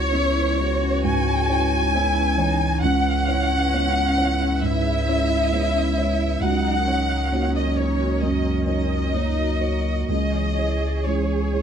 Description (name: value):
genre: neoclassical piano and strings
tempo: 66 BPM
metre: 4/4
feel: rubato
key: C# dorian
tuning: A4 = 441 Hz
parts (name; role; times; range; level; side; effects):
- rich chamber violin section; melody; 0.0-11.6 s; C#5 to G#5; -24 LUFS; left 1 dB; none
- rich cello; second line; 0.0-11.6 s; C#4 to G#4; -29 LUFS; right 4 dB; none
- felt-muted upright piano; accompaniment; 0.0-11.6 s; C#2 to C#5; -26 LUFS; right 6 dB; none
- warm analog pad; sustained chords; 0.0-11.6 s; E3 to E5; -34 LUFS; left 3 dB; chorus
- punchy sub bass; bass; 0.0-11.6 s; C#2; -24 LUFS; left 1 dB; none
- marimba with medium mallets; arpeggios; 0.1-11.4 s; C#4 to D#5; -30 LUFS; left 7 dB; tape echo
room: moderate large studio reverb, RT60 0.9 s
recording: dark, warm production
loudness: -19 LUFS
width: side -8 dB against mid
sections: 0.0-11.6 A section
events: none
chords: 0.0 C#m7; 6.4 F#6/C#; 10.1 C#m